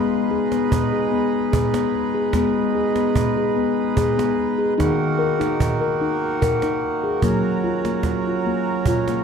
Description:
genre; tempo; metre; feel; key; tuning
world meditative, meditative tuned percussion; 74 BPM; 3/4; straight; Ab minor; A4 = 438 Hz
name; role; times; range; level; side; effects
hand-pumped harmonium; sustained chords; 0.0-9.2 s; Eb3 to Cb5; -25 LUFS; right 4 dB; none
steel tongue drum; arpeggios; 0.0-9.2 s; Eb3 to Bb4; -20 LUFS; left 3 dB; none
cajon; percussion; 0.3-9.2 s; none; -25 LUFS; right 3 dB; none
room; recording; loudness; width
moderate cathedral reverb, RT60 4.3 s; dark, warm production; -18 LUFS; side -6 dB against mid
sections
0.0-9.2 A section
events
none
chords
0.0 Abm; 4.8 Ebm; 7.2 Gb

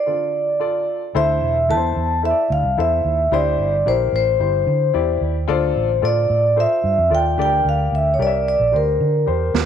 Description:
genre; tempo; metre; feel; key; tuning
uptempo 1960s-style soul; 111 BPM; 4/4; straight; D minor; A4 = 440 Hz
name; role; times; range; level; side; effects
vibraphone with soft mallets; melody; 0.0-9.5 s; Bb4 to A5; -18 LUFS; equal; none
dark baby grand piano; accompaniment; 0.1-9.7 s; D3 to E5; -24 LUFS; left 9 dB; none
vintage muted fingered electric bass; bass; 1.1-9.7 s; E1 to D3; -21 LUFS; right 2 dB; none
snare drum; drums; 9.5-9.7 s; none; -17 LUFS; right 10 dB; none
room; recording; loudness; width
moderate echo chamber reverb, RT60 1.8 s, small room ambience; 1960s-style stereo with parts hard left and right; -16 LUFS; side -8 dB against mid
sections
0.0-1.1 A section; 1.1-9.7 B section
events
break 0.0-1.1; drum fill 9.3-9.7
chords
0.1 Dm; 1.1 Am; 3.3 C; 5.5 Dm; 7.4 Gm

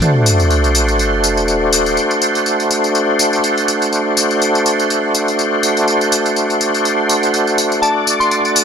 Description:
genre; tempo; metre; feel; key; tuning
breakbeat, breaks; 123 BPM; 4/4; swing 56% on 16ths; unclear; A4 = 440 Hz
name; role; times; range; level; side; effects
overdriven tonewheel organ; sustained chords; 0.0-8.6 s; A3 to D5; -14 LUFS; equal; chorus vibrato, slow rotary speaker, vintage 12-bit sampler grit
tambourine; drums; 0.0-8.6 s; none; -18 LUFS; left 1 dB; small room ambience
sub drop; sound effects; 0.0-2.0 s; none; -16 LUFS; equal; none
soft synth bell; melody; 7.8-8.4 s; A5 to C6; -17 LUFS; left 2 dB; chorus, AM radio sound
room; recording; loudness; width
moderate lush hall reverb, RT60 2.2 s; dry, gritty hardware recording; -12 LUFS; side -7 dB against mid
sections
0.0-8.6 A section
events
impact 0.0-2.0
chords
0.0 D7

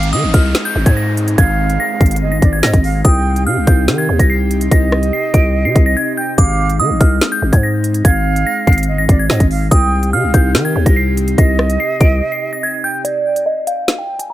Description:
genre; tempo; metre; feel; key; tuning
hip hop, drill; 144 BPM; 4/4; half-time; C minor; A4 = 443 Hz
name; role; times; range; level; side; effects
glassy synth bell; melody; 0.0-14.3 s; D5 to D7; -19 LUFS; right 1 dB; chorus, phaser, low-pass filter, digital delay
concert flute; second line; 0.0-13.0 s; D5 to G5; -23 LUFS; right 5 dB; digital delay
airy breathy pad; sustained chords; 0.0-13.0 s; C3 to G4; -23 LUFS; left 1 dB; chorus
growling 808-style bass; bass; 0.0-12.2 s; G1 to Eb3; -15 LUFS; equal; none
drill drum kit; drums; 0.0-14.3 s; hi-hat, kick drum, rim click, snare drum; -12 LUFS; equal; none
downlifter; sound effects; 0.0-3.0 s; none; -28 LUFS; equal; none
room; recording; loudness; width
little or no reverb; none; -12 LUFS; side -14 dB against mid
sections
0.0-13.0 A section; 13.0-14.3 B section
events
break 6.0-6.4, 12.2-13.0, 13.0-14.3; filter sweep on synth bell 13.0-14.3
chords
0.0 Ab; 3.0 Cm; 6.4 Ab; 9.7 Cm; 13.0 N.C.

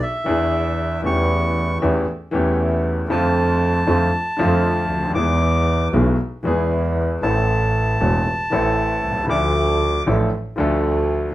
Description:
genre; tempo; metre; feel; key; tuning
tango; 116 BPM; 4/4; rubato; A minor; A4 = 439 Hz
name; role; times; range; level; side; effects
bandoneon; melody; 0.0-10.0 s; E5 to D6; -23 LUFS; equal; none
warm baby grand piano; accompaniment; 0.2-11.3 s; E1 to A4; -21 LUFS; left 1 dB; none
clear double bass; bass; 0.3-11.3 s; E1 to F2; -20 LUFS; right 1 dB; none
room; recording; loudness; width
wet studio reverb, RT60 0.6 s; rough home demo mix; -17 LUFS; side -15 dB against mid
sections
0.0-11.3 A section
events
none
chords
0.0 E7; 1.0 A7/E; 3.1 Dm7/F; 5.2 E; 7.2 Am; 9.3 Dm

